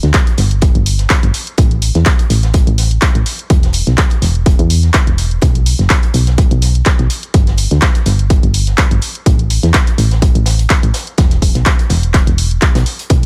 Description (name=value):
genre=piano house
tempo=125 BPM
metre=4/4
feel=swing 55% on 16ths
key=unclear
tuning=A4 = 441 Hz
part: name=solid FM bass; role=bass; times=0.0-13.3 s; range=E1 to E2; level=-15 LUFS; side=equal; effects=tube saturation, sidechain pumping
part: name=crunchy breakbeat drum kit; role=drums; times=0.0-13.2 s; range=hi-hat, snare drum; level=-31 LUFS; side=equal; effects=sidechain pumping on hats, high-pass filter on hats, studio reverb, high-pass filter on snare, high-pass filter on room
part: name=punchy analog drum machine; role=drums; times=0.0-13.3 s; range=handclaps, hi-hat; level=-20 LUFS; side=equal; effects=studio reverb
part: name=electronic kick drum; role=drums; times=0.1-13.2 s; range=none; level=-14 LUFS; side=equal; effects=overdrive, studio reverb
room=little or no reverb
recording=none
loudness=-12 LUFS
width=mono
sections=0.0-13.3 A section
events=none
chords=none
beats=0.14 0.62 1.10 | 1.58 2.06 2.54 3.02 | 3.50 3.98 4.46 4.94 | 5.42 5.90 6.38 6.86 | 7.34 7.82 8.30 8.78 | 9.26 9.74 10.22 10.70 | 11.18 11.66 12.14 12.62 | 13.10